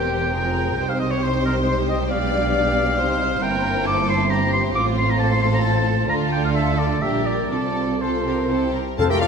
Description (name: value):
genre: quick classical-period movement for symphony orchestra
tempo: 120-139 BPM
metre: 3/4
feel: rubato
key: F major from 3.4 s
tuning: A4 = 440 Hz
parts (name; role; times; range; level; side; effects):
- rich studio violin section; melody; 0.0-9.3 s; F4 to A5; -28 LUFS; left 4 dB; none
- clear oboe; second line; 0.0-9.3 s; Bb4 to D6; -24 LUFS; equal; none
- warm studio violin section; second line; 0.0-9.3 s; A3 to D5; -27 LUFS; left 4 dB; none
- warm studio viola section; accompaniment; 0.0-9.3 s; F3 to A4; -26 LUFS; right 2 dB; none
- dark studio cello section; bass; 0.0-9.3 s; E2 to D3; -26 LUFS; right 2 dB; none
- warm studio double bass section; bass; 0.0-9.3 s; E1 to D2; -26 LUFS; right 3 dB; none
- concert flute; second line; 9.0-9.3 s; A4 to C5; -26 LUFS; left 3 dB; none
- mellow clarinet; second line; 9.0-9.3 s; F4 to A4; -25 LUFS; left 2 dB; none
- timpani; percussion; 9.0-9.3 s; F2; -22 LUFS; left 2 dB; none
room: moderate scoring stage reverb, RT60 1.9 s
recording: none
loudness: -18 LUFS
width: side -6 dB against mid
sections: 0.0-9.0 A section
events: none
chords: 0.3 Fm; 0.8 Cm; 2.1 G7/B; 3.0 Cm; 3.4 C7/G; 4.8 F/A; 6.1 Dm; 7.0 Gm/Bb; 7.5 F/C; 8.5 C